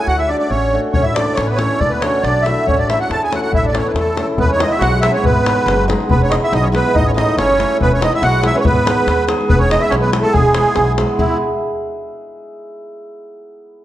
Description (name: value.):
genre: balkan folk, Balkan wedding band.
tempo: 141 BPM.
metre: 2/4.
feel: straight.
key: A major, E major from 4.4 s.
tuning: A4 = 442 Hz.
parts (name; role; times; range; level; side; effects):
musette accordion; melody; 0.0-11.4 s; E4 to A5; -17 LUFS; right 1 dB; none.
dark trumpet; second line; 0.0-11.4 s; G#3 to E5; -23 LUFS; right 3 dB; none.
hammered dulcimer; accompaniment; 0.0-11.4 s; G#3 to A4; -21 LUFS; equal; none.
upright bass; bass; 0.1-11.4 s; E1 to E2; -20 LUFS; equal; none.
davul; percussion; 0.9-11.4 s; none; -20 LUFS; left 2 dB; none.
room: wet recital hall reverb, RT60 1.4 s.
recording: none.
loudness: -13 LUFS.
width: side -13 dB against mid.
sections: 0.0-4.4 A section; 4.4-11.2 B section.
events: speeding up 0.0-12.0.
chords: 0.1 D; 0.9 A; 1.8 D; 2.7 A; 4.4 E; 5.2 G#m; 6.1 E; 7.0 A; 7.8 E; 8.6 G#m; 9.5 E.